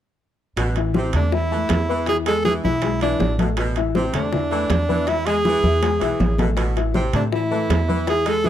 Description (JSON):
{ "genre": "latin, salsa", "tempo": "160 BPM", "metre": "4/4", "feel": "straight", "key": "A harmonic minor", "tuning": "A4 = 437 Hz", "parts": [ { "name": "edgy saxophone section", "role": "second line", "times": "0.6-8.5 s", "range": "B2 to G#3", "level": "-29 LUFS", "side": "right 3 dB", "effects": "none" }, { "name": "upright bass", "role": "bass", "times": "0.6-8.5 s", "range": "A1 to A2", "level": "-23 LUFS", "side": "right 1 dB", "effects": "none" }, { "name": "bongos", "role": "percussion", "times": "0.6-8.5 s", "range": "none", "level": "-30 LUFS", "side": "left 6 dB", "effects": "none" }, { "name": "congas", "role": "percussion", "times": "0.6-8.5 s", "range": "none", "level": "-26 LUFS", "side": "equal", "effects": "none" }, { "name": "timbales", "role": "percussion", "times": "0.6-8.5 s", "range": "none", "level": "-30 LUFS", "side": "right 7 dB", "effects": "none" }, { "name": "dark upright piano", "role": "accompaniment", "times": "0.8-8.5 s", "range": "E3 to B5", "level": "-25 LUFS", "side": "left 11 dB", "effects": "none" }, { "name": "bright tenor saxophone", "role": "melody", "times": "1.0-8.5 s", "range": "C4 to A4", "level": "-23 LUFS", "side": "right 3 dB", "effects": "none" } ], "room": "small room reverb", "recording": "dry, close 1970s-style studio recording", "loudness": "-18 LUFS", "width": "side -11 dB against mid", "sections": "0.6-8.5 A section", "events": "drum fill 5.8-6.6", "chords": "0.6 Am; 2.1 E7; 3.6 Am; 5.1 E; 6.6 Am" }